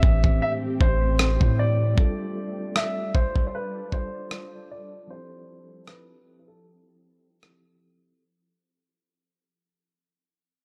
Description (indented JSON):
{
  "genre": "contemporary R&B",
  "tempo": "77 BPM",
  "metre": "4/4",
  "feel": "swing 54% on 16ths",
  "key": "unclear",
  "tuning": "A4 = 438 Hz",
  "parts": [
    { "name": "warm concert grand piano", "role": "melody", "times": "0.0-7.8 s", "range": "A4 to E5", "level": "-33 LUFS", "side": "equal", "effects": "low-pass filter" },
    { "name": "mellow tine electric piano", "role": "accompaniment", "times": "0.0-8.2 s", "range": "A2 to D5", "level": "-36 LUFS", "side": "equal", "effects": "low-pass filter" },
    { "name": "ethereal airy pad", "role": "sustained chords", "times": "0.0-8.2 s", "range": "F3 to D5", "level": "-38 LUFS", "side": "equal", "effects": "ensemble chorus, built-in reverb, low-pass filter" },
    { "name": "long sustained 808-style bass", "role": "bass", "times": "0.0-2.0 s", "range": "A1 to A2", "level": "-25 LUFS", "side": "equal", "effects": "none" },
    { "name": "dusty soul sampler-style drum kit", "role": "drums", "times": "0.0-7.6 s", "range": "kick drum, rim click", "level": "-24 LUFS", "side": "equal", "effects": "none" }
  ],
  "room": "digital ambience",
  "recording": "dark, warm production",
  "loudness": "-24 LUFS",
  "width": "mono",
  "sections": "0.0-8.2 A section",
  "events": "fade-out 0.0-8.2; filter sweep 0.0-8.2",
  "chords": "0.0 Am7; 2.0 Gsus2; 5.1 Fmaj9"
}